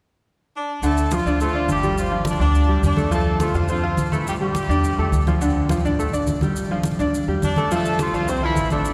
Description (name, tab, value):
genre	latin, salsa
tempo	209 BPM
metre	4/4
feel	straight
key	unclear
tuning	A4 = 435 Hz
part	clear horn section	melody	0.6-5.2, 7.4-8.9 s	E3 to D5	-27 LUFS	equal	none
part	bright grand piano	accompaniment	0.8-8.9 s	D3 to F5	-25 LUFS	equal	none
part	upright bass	bass	0.8-8.9 s	G1 to F2	-26 LUFS	equal	none
part	congas	percussion	0.8-8.9 s	none	-28 LUFS	equal	none
part	maracas	percussion	0.8-8.9 s	none	-41 LUFS	equal	none
room	wet cathedral reverb, RT60 5.2 s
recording	recorded in a church or concert hall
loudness	-21 LUFS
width	mono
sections	0.8-8.9 A section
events	none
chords	0.0 N.C.; 0.8 G5; 3.1 Fmaj7; 4.3 A7sus4; 5.4 Dm; 6.6 G5; 7.7 Fmaj7